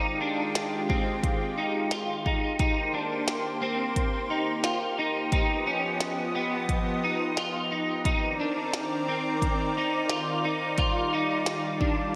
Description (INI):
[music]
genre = dream pop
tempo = 88 BPM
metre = 4/4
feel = straight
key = Eb major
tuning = A4 = 441 Hz
[part]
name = lush unison pad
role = sustained chords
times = 0.0-12.2 s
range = Eb3 to D#5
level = -32 LUFS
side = equal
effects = chorus
[part]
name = electric guitar at the edge of break-up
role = arpeggios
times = 0.0-12.2 s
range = B3 to F4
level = -31 LUFS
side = equal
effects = ensemble chorus, delay
[part]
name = glitchy drum kit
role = drums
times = 0.6-12.0 s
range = hi-hat, kick drum, snare drum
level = -32 LUFS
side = equal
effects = gated reverb
[sound]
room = wet plate reverb, RT60 2.1 s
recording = bright 1980s-style digital production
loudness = -28 LUFS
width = mono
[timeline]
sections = 0.0-12.2 A section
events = none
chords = 0.0 Fm9; 2.6 Eb6; 5.3 Gaug7; 8.1 Cm9; 10.8 Ebmaj9